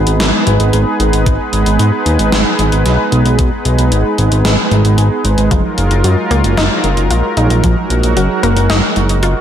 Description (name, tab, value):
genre	synthwave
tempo	113 BPM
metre	4/4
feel	straight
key	G# dorian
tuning	A4 = 444 Hz
part	warm analog pad	sustained chords	0.0-9.4 s	F#3 to B4	-15 LUFS	right 2 dB	chorus, tremolo, sidechain pumping
part	fat analog bass	bass	0.0-9.3 s	F#1 to G#2	-12 LUFS	equal	sidechain pumping
part	gated 80s digital drum machine	drums	0.1-9.3 s	hi-hat, snare drum	-18 LUFS	left 1 dB	gated reverb, gated reverb snare
part	electronic kick drum	drums	1.3-7.7 s	none	-15 LUFS	equal	none
part	wide unison pluck	arpeggios	5.5-9.4 s	E#3 to E#4	-19 LUFS	left 2 dB	tape echo
room	light reverb, digital ambience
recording	none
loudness	-10 LUFS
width	side -9 dB against mid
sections	0.0-9.4 A section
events	none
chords	0.0 G#m; 5.5 D#madd9/F#